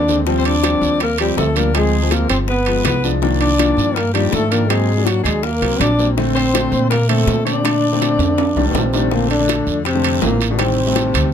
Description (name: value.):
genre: Afro-Cuban jazz.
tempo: 163 BPM.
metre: 4/4.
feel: straight.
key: Bb major.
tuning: A4 = 441 Hz.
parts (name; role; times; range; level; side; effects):
breathy trombone; melody; 0.0-11.3 s; Gb3 to D4; -19 LUFS; equal; none.
bright tenor saxophone; second line; 0.0-11.3 s; Bb2 to D5; -24 LUFS; left 6 dB; none.
upright bass; bass; 0.0-11.3 s; G1 to Bb2; -20 LUFS; equal; none.
warm concert grand piano; accompaniment; 0.1-11.3 s; D3 to D4; -20 LUFS; left 3 dB; none.
bongos; percussion; 0.1-11.3 s; none; -26 LUFS; left 9 dB; none.
guiro; percussion; 0.1-11.3 s; none; -29 LUFS; right 9 dB; none.
timbales; percussion; 0.5-11.3 s; none; -24 LUFS; right 10 dB; none.
room: light reverb.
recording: close, detailed microphones.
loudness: -14 LUFS.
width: side -8 dB against mid.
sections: 0.0-9.1 A section; 9.1-11.3 B section.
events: drum fill 8.2-9.1.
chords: 0.3 Eb6; 1.7 Dm7b5; 2.5 G7b9; 3.2 Cm11; 4.7 Ab9; 6.2 Bbmaj7; 8.4 F13; 9.1 Bbmaj7; 10.6 Am7b5.